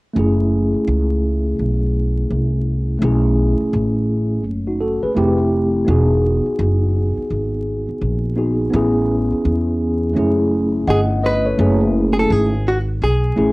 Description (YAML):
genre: hip hop, jazz-hop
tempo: 84 BPM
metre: 4/4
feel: swing 63% on 16ths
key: F# dorian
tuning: A4 = 440 Hz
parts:
  - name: mellow tine electric piano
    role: accompaniment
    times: 0.1-13.5 s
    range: A3 to F#5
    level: -18 LUFS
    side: equal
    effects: medium stereo tremolo, cassette tape
  - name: upright bass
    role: bass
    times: 0.2-13.5 s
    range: E1 to E2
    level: -18 LUFS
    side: equal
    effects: none
  - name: hollow-body jazz guitar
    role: melody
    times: 10.9-13.5 s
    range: F#4 to B4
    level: -20 LUFS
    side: equal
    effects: cassette tape
room: moderate studio reverb, RT60 0.6 s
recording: home recording on cassette, vinyl crackle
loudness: -15 LUFS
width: side -23 dB against mid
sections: 0.2-11.6 A section; 11.6-13.5 B section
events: none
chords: 0.2 F#m9; 3.0 B13sus4; 5.2 Fmaj9; 5.9 Emaj9; 8.7 Amaj9; 10.2 F#m9